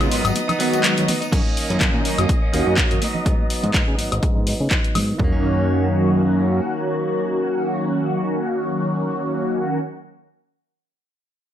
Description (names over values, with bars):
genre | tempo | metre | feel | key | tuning
filtered disco house | 124 BPM | 4/4 | swing 55% on 16ths | F# major | A4 = 441 Hz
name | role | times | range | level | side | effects
mellow synth brass | accompaniment | 0.0-9.8 s | D#3 to F#4 | -21 LUFS | equal | chorus, phaser, sidechain pumping, low-pass filter
warm studio violin section | sustained chords | 0.0-5.2 s | D#5 to D#6 | -30 LUFS | left 1 dB | sidechain pumping, low-pass filter
direct-recorded clean electric guitar | riff | 0.0-10.0 s | D#3 to D#4 | -28 LUFS | right 2 dB | sidechain pumping, low-pass filter
fat analog bass | bass | 0.0-6.6 s | F#1 to C#3 | -22 LUFS | equal | sidechain pumping, low-pass filter
punchy analog drum machine | drums | 0.0-5.1 s | crash cymbal, handclaps, hi-hat, woodblock | -23 LUFS | left 2 dB | sidechain pumping on hats, sidechain pumping on perc, sidechain pumping on cymbals
congas and tambourine | percussion | 0.0-5.2 s | none | -31 LUFS | right 3 dB | sidechain pumping on perc, low-pass filter on perc
punchy analog drum machine | drums | 1.3-5.3 s | kick drum, toms | -20 LUFS | equal | none
room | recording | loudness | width
light reverb, digital ambience | none | -18 LUFS | side -10 dB against mid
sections
0.0-1.3 A section; 1.3-5.2 B section; 5.2-9.1 C section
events
drop 0.0-1.3; filter sweep on analog synth bass 1.3-5.2; filter sweep 1.3-5.2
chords
0.0 G#m7; 1.3 F#6; 3.0 G#m7; 5.2 F#6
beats
0.36 0.84 | 1.32 1.81 2.29 2.78 | 3.26 3.74 4.23 4.71 | 5.20 5.68 6.16 6.65 | 7.13 7.62 8.10 8.58